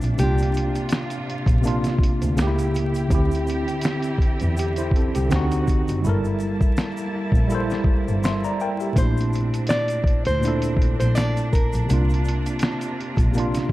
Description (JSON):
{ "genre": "lo-fi hip hop", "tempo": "82 BPM", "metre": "4/4", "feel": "swing 56% on 16ths", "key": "G dorian", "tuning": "A4 = 440 Hz", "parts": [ { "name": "tine electric piano", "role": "accompaniment", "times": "0.0-13.7 s", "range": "Bb2 to C6", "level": "-24 LUFS", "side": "equal", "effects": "overdrive, fast stereo tremolo, cassette tape" }, { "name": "warm symphonic string section", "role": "sustained chords", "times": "0.0-13.7 s", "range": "Bb2 to A5", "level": "-32 LUFS", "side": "right 1 dB", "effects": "none" }, { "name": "warm double bass", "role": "bass", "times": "0.0-13.3 s", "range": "F#1 to E2", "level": "-23 LUFS", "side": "equal", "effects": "none" }, { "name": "lo-fi sampler-style drum kit", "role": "drums", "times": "0.0-13.7 s", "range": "hi-hat, kick drum, snare drum", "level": "-22 LUFS", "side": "equal", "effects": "none" }, { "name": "tube shaker", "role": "percussion", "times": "0.0-13.7 s", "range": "none", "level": "-46 LUFS", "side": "left 3 dB", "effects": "none" }, { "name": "nylon-string guitar", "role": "melody", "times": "0.2-1.6, 9.0-12.9 s", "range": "G4 to D5", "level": "-28 LUFS", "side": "equal", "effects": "analog delay" } ], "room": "light reverb, small room ambience", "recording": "vinyl crackle", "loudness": "-19 LUFS", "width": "side -17 dB against mid", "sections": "0.0-13.7 A section", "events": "hi-hats muted 6.0-9.0", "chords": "0.2 C9sus4; 2.4 C#dim7; 3.1 D9sus4; 5.3 D7b9; 6.0 Gm69; 9.0 Bbmaj9#11; 11.9 C9sus4" }